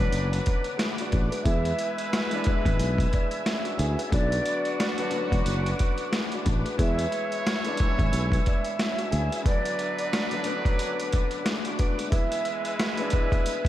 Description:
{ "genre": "hip hop, boom-bap hip-hop", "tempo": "90 BPM", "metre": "4/4", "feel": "swing 60% on 16ths", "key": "B dorian", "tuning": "A4 = 440 Hz", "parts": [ { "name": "clear upright piano", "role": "accompaniment", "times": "0.0-13.7 s", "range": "D3 to G#5", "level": "-32 LUFS", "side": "left 3 dB", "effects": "high-pass filter, low-pass filter" }, { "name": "tonewheel organ", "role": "sustained chords", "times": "0.0-13.7 s", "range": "B4 to E6", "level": "-36 LUFS", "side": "equal", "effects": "chorus vibrato, slow rotary speaker, high-pass filter, low-pass filter" }, { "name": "bright trumpet section", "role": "stabs", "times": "0.0-13.7 s", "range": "F#3 to C#5", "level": "-34 LUFS", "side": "right 3 dB", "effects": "high-pass filter, low-pass filter, analog delay" }, { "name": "sustaining fretless electric bass", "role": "bass", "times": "0.0-9.3 s", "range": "E1 to E2", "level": "-26 LUFS", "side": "equal", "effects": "none" }, { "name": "boom bap sampler-style drum kit", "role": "drums", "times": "0.1-13.7 s", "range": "hi-hat, kick drum, snare drum", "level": "-27 LUFS", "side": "equal", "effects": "none" }, { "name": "breathy concert flute", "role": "melody", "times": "1.4-12.9 s", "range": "D5 to E5", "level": "-33 LUFS", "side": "right 2 dB", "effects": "high-pass filter, low-pass filter, analog delay" } ], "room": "moderate huge ambient reverb, RT60 4.3 s", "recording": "dreamy mix soaked in reverb, vinyl crackle", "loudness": "-24 LUFS", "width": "side -13 dB against mid", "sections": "0.0-13.7 A section", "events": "none", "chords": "0.0 Bm; 1.5 E; 4.1 Bm; 6.8 E; 9.5 Bm; 12.1 E", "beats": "0.12 0.79 | 1.46 2.12 2.79 3.46 | 4.12 4.79 5.46 6.12 | 6.79 7.46 8.12 8.79 | 9.46 10.12 10.79 11.46 | 12.12 12.79 13.46" }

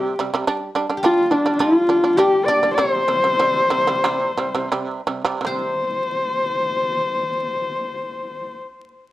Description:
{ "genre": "mongolian traditional, Mongolian folk", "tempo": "80-108 BPM", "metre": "4/4", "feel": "straight", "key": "C zhi mode", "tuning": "A4 = 440 Hz", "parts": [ { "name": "dark horsehead fiddle", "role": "melody", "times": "0.0-8.6 s", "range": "D4 to D5", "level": "-18 LUFS", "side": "left 1 dB", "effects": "analog delay" }, { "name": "guzheng", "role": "second line", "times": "0.0-8.6 s", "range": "F4 to D5", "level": "-28 LUFS", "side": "equal", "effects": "analog delay" }, { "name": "shamisen", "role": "arpeggios", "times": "0.0-8.6 s", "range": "C3 to D4", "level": "-23 LUFS", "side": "right 4 dB", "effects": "none" } ], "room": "moderate studio reverb, RT60 0.6 s", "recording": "dark, warm production, vinyl crackle", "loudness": "-17 LUFS", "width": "side -15 dB against mid", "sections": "0.0-5.5 A section; 5.5-8.4 B section", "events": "slowing down 0.5-5.5", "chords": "0.5 G5; 2.8 C5", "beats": "| 0.46 1.02 1.59 2.17 | 2.77 3.39 4.04 4.73 | 5.45 6.20 6.95 7.70" }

